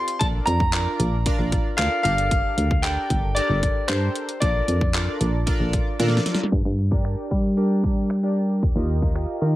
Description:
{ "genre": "dance-pop", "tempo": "114 BPM", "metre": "4/4", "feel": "straight", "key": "unclear", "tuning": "A4 = 438 Hz", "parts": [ { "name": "clear concert grand piano", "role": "melody", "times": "0.0-6.2 s", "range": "C5 to C6", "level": "-25 LUFS", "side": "left 1 dB", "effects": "none" }, { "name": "chorused retro synth keys", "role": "accompaniment", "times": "0.0-9.6 s", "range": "D4 to Eb5", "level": "-29 LUFS", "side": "right 1 dB", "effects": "sidechain pumping" }, { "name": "pop drum kit", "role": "drums", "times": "0.1-9.5 s", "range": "finger snaps, handclaps, hi-hat, kick drum, snare drum", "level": "-24 LUFS", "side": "equal", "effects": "none" }, { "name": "solid FM bass", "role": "bass", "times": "0.2-9.6 s", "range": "G1 to G3", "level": "-22 LUFS", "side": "equal", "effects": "sidechain pumping" } ], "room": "little or no reverb", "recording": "low-pass filter", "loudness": "-20 LUFS", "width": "side -16 dB against mid", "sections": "0.0-6.5 A section; 6.5-9.6 B section", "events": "drum fill 6.0-6.5; filter sweep 6.5-9.6", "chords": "0.2 Bbmaj7; 2.0 Gmadd9; 4.4 Bbmaj7; 6.5 Gm; 8.6 Ebadd9" }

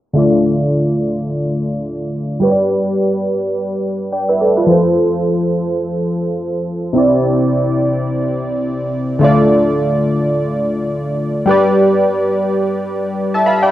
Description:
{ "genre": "afrobeats", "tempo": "free time", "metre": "none", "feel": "none", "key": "unclear", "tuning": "A4 = 435 Hz", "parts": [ { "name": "warm analog keys", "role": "accompaniment", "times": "0.1-13.7 s", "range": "C3 to B5", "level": "-13 LUFS", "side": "equal", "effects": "chorus" } ], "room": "light reverb", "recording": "home recording on cassette, low-pass filter", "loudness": "-13 LUFS", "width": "side -13 dB against mid", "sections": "0.2-9.2 A section; 9.2-13.7 B section", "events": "filter sweep 0.2-9.2", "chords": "0.2 Dm; 2.4 G; 4.7 F; 7.0 Cadd9; 9.2 Dm; 11.5 G" }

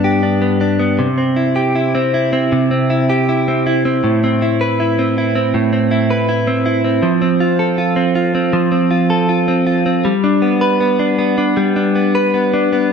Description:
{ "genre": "pop", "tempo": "79 BPM", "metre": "4/4", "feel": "straight", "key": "unclear", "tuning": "A4 = 440 Hz", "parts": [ { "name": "direct-recorded clean electric guitar", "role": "solo", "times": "0.0-12.9 s", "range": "G2 to B4", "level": "-13 LUFS", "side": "equal", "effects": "lush chorus" } ], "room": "moderate lush hall reverb, RT60 2.6 s", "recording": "none", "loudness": "-13 LUFS", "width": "side -6 dB against mid", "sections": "0.0-12.9 A section", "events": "none", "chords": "0.0 G; 1.0 C; 4.0 Amadd9; 7.0 F; 10.1 G" }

